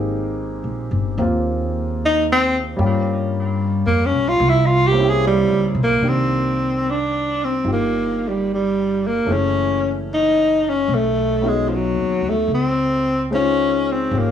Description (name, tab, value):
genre	jazz ballad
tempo	74 BPM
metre	4/4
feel	swing 67% on 8ths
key	unclear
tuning	A4 = 440 Hz
part	warm concert grand piano	accompaniment	0.0-14.3 s	Eb3 to C5	-25 LUFS	right 2 dB	none
part	upright bass	bass	0.0-14.3 s	F#1 to G2	-23 LUFS	equal	none
part	breathy tenor saxophone	melody	2.1-14.3 s	F3 to Ab4	-18 LUFS	left 1 dB	analog delay
room	moderate small room reverb, RT60 0.5 s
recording	cassette tape, studio reverb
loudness	-16 LUFS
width	side -9 dB against mid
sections	0.0-6.0 A section; 6.0-14.3 B section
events	tenor saxophone solo 0.0-6.0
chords	0.0 Abmaj9; 2.8 Gm7b5; 4.4 C7b9; 6.0 Cm9; 9.3 F#m7; 10.9 Badd9; 12.5 Dbmaj9